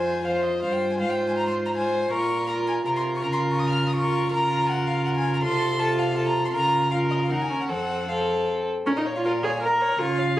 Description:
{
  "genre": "quick classical-period movement for string quartet",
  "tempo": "161 BPM",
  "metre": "3/4",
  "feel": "straight",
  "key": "Bb minor from 4.3 s",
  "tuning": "A4 = 439 Hz",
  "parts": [
    { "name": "warm violin", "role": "melody", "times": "0.0-10.4 s", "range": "Db5 to F6", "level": "-28 LUFS", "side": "left 1 dB", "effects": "none" },
    { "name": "rich violin", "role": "second line", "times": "0.0-10.4 s", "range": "A4 to F5", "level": "-27 LUFS", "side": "left 1 dB", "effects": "none" },
    { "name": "warm viola", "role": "accompaniment", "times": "0.0-10.4 s", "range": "C4 to Bb4", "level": "-26 LUFS", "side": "right 2 dB", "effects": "none" },
    { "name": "dark cello", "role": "bass", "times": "0.0-10.4 s", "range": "Eb2 to Db3", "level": "-29 LUFS", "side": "equal", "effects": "none" }
  ],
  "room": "light reverb",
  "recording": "recorded on a phone in the room, studio ambience, compression",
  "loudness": "-22 LUFS",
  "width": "side -14 dB against mid",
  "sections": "0.0-8.9 A section; 8.9-10.4 B section",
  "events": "none",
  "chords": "0.0 Fm; 1.0 Fm/Ab; 2.1 Bbm; 3.2 Bbm/Db; 5.4 F/C; 6.5 Bbm/Db; 7.3 Eb5; 7.7 F; 8.9 Bbm",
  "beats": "0.24 0.62 | 0.99 1.37 1.74 | 2.11 2.48 2.86 | 3.23 3.60 3.96 | 4.33 4.69 5.06 | 5.42 5.79 6.17 | 6.54 6.91 7.29 | 7.69 8.08 8.47 | 8.86 9.24 9.62 | 9.99 10.37"
}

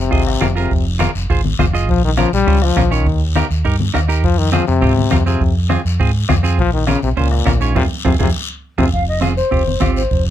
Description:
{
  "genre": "latin, cumbia",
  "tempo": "204 BPM",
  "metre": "4/4",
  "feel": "straight",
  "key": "F minor",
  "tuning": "A4 = 442 Hz",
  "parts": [
    { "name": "bright trombone", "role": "second line", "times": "0.0-8.9 s", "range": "Ab2 to G3", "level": "-18 LUFS", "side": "left 6 dB", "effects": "none" },
    { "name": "fingered electric bass", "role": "bass", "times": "0.0-10.3 s", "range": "F1 to Ab2", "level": "-17 LUFS", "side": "equal", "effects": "none" },
    { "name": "clean electric guitar", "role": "accompaniment", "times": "0.1-10.0 s", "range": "C4 to Eb5", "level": "-20 LUFS", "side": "right 7 dB", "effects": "none" },
    { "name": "bombo", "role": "percussion", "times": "0.1-10.3 s", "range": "none", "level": "-20 LUFS", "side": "right 1 dB", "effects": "none" },
    { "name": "guiro", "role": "percussion", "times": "0.1-10.3 s", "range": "none", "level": "-29 LUFS", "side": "left 6 dB", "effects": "none" },
    { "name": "congas", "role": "percussion", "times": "0.4-10.0 s", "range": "none", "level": "-22 LUFS", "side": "left 5 dB", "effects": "none" },
    { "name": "mellow hollow jazz flute", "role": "melody", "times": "8.9-10.2 s", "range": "C5 to F5", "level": "-19 LUFS", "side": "left 2 dB", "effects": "none" }
  ],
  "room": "little or no reverb",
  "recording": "close, detailed microphones",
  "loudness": "-13 LUFS",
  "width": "side -11 dB against mid",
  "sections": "0.0-8.9 A section; 8.9-10.3 B section",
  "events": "trombone solo 0.0-8.9; band accent 7.8-8.9; drum fill 8.1-8.9",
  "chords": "0.0 Fm; 1.9 Bbm; 3.1 Eb; 4.2 Fm; 6.6 Bbm; 7.8 Fm",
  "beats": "0.12 0.42 | 0.71 1.00 1.30 1.59 | 1.89 2.18 2.47 2.77 | 3.06 3.35 3.65 3.94 | 4.23 4.53 4.82 5.12 | 5.41 5.70 6.00 6.29 | 6.58 6.88 7.17 7.46 | 7.76 8.05 8.35 8.64 | 8.93 9.23 9.52 9.81 | 10.11"
}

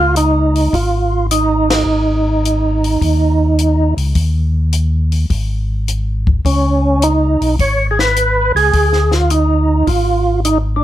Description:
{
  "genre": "soul jazz organ trio",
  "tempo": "105 BPM",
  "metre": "4/4",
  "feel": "swing 69% on 8ths",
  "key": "unclear",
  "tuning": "A4 = 441 Hz",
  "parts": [
    { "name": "percussive tonewheel organ", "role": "melody", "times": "0.0-10.8 s", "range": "Db4 to Db5", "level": "-14 LUFS", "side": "right 2 dB", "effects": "slow rotary speaker, overdrive, chorus vibrato" },
    { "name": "mellow tonewheel organ", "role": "bass", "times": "0.0-10.8 s", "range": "Ab1 to Eb2", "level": "-15 LUFS", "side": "equal", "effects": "chorus vibrato, slow rotary speaker" },
    { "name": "compact cocktail drum kit", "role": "drums", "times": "0.2-10.6 s", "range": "hi-hat, kick drum, ride cymbal, snare drum", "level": "-20 LUFS", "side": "left 2 dB", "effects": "none" }
  ],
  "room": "little or no reverb",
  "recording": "none",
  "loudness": "-12 LUFS",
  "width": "side -13 dB against mid",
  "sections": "0.0-10.8 A section",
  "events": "band accent 1.6",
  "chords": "0.0 Dbadd9; 1.9 Ab5; 4.2 N.C.; 6.4 Dbsus2; 8.7 Ddim",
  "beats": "0.16 0.73 1.30 | 1.87 2.44 3.01 3.58 | 4.16 4.73 5.30 5.87 | 6.44 7.01 7.58 8.16 | 8.73 9.30 9.87 10.44"
}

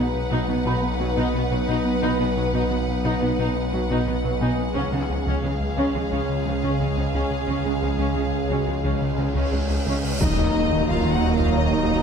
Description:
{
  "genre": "cinematic, hybrid orchestral and electronic film score",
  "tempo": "88 BPM",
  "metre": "4/4",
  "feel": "straight",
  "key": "unclear",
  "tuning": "A4 = 440 Hz",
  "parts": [
    { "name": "clear chamber violin section", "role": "melody", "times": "0.0-12.0 s", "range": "Eb5 to F#5", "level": "-34 LUFS", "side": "left 2 dB", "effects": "none" },
    { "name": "rich studio violin section", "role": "second line", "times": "0.0-12.0 s", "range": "Ab4 to Bb5", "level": "-32 LUFS", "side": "right 1 dB", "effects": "none" },
    { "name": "rich symphonic viola section", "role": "accompaniment", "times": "0.0-12.0 s", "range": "F3 to D#4", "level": "-31 LUFS", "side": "left 1 dB", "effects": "none" },
    { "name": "warbly tape-like pad", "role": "sustained chords", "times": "0.0-12.0 s", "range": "Db3 to Db5", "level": "-28 LUFS", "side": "equal", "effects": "chorus, built-in reverb" },
    { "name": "thumb-piano-like synth pluck", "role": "arpeggios", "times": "0.0-12.0 s", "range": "Db3 to B4", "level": "-32 LUFS", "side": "right 6 dB", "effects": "none" },
    { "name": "round analog bass", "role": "riff", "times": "0.0-12.0 s", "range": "Db2 to B3", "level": "-29 LUFS", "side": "left 3 dB", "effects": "none" },
    { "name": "snarling distorted saw bass", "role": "bass", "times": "0.0-12.0 s", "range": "Eb1 to Db2", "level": "-28 LUFS", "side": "equal", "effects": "distortion" },
    { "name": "warm symphonic cello section", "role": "bass", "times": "0.0-12.0 s", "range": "Eb2 to Db3", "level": "-29 LUFS", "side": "right 4 dB", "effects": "none" },
    { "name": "felt-muted upright piano", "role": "texture", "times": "0.0-12.0 s", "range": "F#4 to B5", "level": "-37 LUFS", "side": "equal", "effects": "none" },
    { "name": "cymbal swell and impact", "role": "sound effects", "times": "9.2-12.0 s", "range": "none", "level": "-31 LUFS", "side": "equal", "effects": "none" },
    { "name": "warm French horn section", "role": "sustained chords", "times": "10.2-12.0 s", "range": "Eb4 to Gb4", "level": "-26 LUFS", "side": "left 7 dB", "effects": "none" },
    { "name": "warm trombone section", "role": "sustained chords", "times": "10.2-12.0 s", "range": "Gb3 to Bb3", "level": "-30 LUFS", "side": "right 6 dB", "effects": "none" },
    { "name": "rich symphonic double bass section", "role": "bass", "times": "10.2-12.0 s", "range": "Eb2", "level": "-27 LUFS", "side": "right 4 dB", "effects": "none" },
    { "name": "taiko ensemble", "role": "drums", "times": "10.2-12.0 s", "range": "none", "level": "-30 LUFS", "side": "right 1 dB", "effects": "none" }
  ],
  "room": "wet scoring stage reverb, RT60 1.5 s",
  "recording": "dark, warm production",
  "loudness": "-20 LUFS",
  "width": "side -6 dB against mid",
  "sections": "0.0-10.2 A section; 10.2-12.0 B section",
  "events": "build-up 0.0-10.2; cymbal swell 9.2-10.2; impact 10.2-12.0",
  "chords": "0.0 B; 4.8 Db; 10.2 Ebm",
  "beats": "0.66 1.34 | 2.03 2.71 3.39 4.07 | 4.75 5.43 6.12 6.80 | 7.48 8.16 8.84 9.53 | 10.21 10.89 11.57"
}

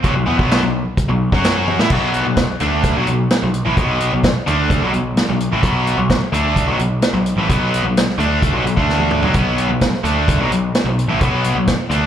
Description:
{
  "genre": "classic rock",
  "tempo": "129 BPM",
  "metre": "4/4",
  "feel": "straight",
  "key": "unclear",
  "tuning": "A4 = 441 Hz",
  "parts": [
    { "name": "cranked stack guitar", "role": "riff", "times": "0.0-12.1 s", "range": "A2 to F#4", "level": "-22 LUFS", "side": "right 12 dB", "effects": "overdrive, slapback echo" },
    { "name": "overdriven electric guitar", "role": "riff", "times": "0.0-12.1 s", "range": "A2 to F#4", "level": "-19 LUFS", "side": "left 5 dB", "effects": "slapback echo" },
    { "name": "growling picked electric bass", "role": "bass", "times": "0.0-12.1 s", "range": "A1 to A2", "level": "-20 LUFS", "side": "equal", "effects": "overdrive" },
    { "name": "vintage drum kit", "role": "drums", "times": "0.0-12.0 s", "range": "crash cymbal, hi-hat, kick drum, snare drum, toms", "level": "-19 LUFS", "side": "equal", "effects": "none" }
  ],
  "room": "light reverb, studio reverb",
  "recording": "live gig heard through the venue's PA, club reverb",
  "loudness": "-14 LUFS",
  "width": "side -10 dB against mid",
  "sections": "0.0-1.9 A section; 1.9-12.1 B section",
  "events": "drum fill 1.7, 8.9-9.4",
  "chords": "0.0 B5; 1.3 F#5; 1.8 A5; 1.9 B5; 8.8 D5; 9.2 B5",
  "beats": "| 0.05 0.51 0.98 1.44 | 1.91 2.37 2.84 3.31 | 3.77 4.24 4.70 5.17 | 5.63 6.10 6.57 7.03 | 7.50 7.96 8.43 8.89 | 9.36 9.82 10.28 10.75 | 11.21 11.68"
}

